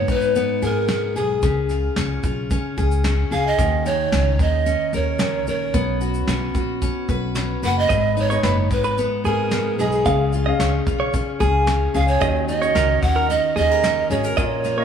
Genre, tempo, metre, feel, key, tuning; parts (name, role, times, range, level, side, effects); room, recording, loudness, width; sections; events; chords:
acoustic pop; 111 BPM; 4/4; straight; Eb minor; A4 = 440 Hz
breathy polished pan flute; melody; 0.0-14.8 s; Ab4 to Gb5; -22 LUFS; right 4 dB
picked steel-string acoustic guitar; accompaniment; 0.0-14.8 s; Ab2 to B4; -23 LUFS; left 3 dB
upright bass; bass; 0.0-14.8 s; F#1 to Eb2; -23 LUFS; equal
soft brush drum kit; drums; 0.1-14.8 s; kick drum, shaker, snare drum; -26 LUFS; right 1 dB
warm upright piano; accompaniment; 7.9-14.8 s; Bb3 to F5; -29 LUFS; left 3 dB
direct-recorded clean electric guitar; arpeggios; 7.9-14.8 s; Ab4 to F5; -26 LUFS; right 4 dB
moderate plate reverb, RT60 1.9 s; heard from further back in the room, small room ambience; -18 LUFS; side -8 dB against mid
0.0-14.8 A section
0.0 Abm; 1.4 Db; 3.6 Eb5; 5.7 Bsus2; 7.9 Abm; 10.1 Db; 12.2 Ebm7